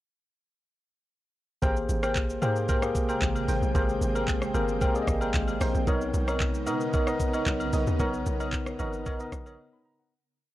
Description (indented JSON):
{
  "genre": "amapiano",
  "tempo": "113 BPM",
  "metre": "4/4",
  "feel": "straight",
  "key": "Ab major",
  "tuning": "A4 = 445 Hz",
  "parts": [
    { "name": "tine electric piano", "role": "accompaniment", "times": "1.6-10.2 s", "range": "Bb3 to B5", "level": "-30 LUFS", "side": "left 1 dB", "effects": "medium stereo tremolo" },
    { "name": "ethereal airy pad", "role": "sustained chords", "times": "2.3-10.1 s", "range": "C3 to G5", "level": "-36 LUFS", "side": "right 1 dB", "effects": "ensemble chorus, built-in reverb" },
    { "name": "deep mellow chord stab", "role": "stabs", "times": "1.6-9.6 s", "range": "Bb4 to G5", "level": "-34 LUFS", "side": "right 1 dB", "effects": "chorus, analog delay" },
    { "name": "hollow log drum bass", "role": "bass", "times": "1.6-9.6 s", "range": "G1 to B2", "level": "-30 LUFS", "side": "equal", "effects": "none" },
    { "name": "smooth R&B drum kit", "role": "drums", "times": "1.6-9.6 s", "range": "handclaps, hi-hat, kick drum, rim click, shaker", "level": "-29 LUFS", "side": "equal", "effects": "none" },
    { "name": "agogo bells", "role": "percussion", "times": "1.6-9.6 s", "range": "none", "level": "-40 LUFS", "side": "left 5 dB", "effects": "none" }
  ],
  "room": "little or no reverb",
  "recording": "dry, gritty hardware recording, cassette tape",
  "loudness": "-25 LUFS",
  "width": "side -15 dB against mid",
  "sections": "1.6-10.1 drop",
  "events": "drop 1.6-10.1; fade-out 8.0-10.1; break 9.6-10.1",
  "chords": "1.6 Abmaj9; 5.9 Bmaj9"
}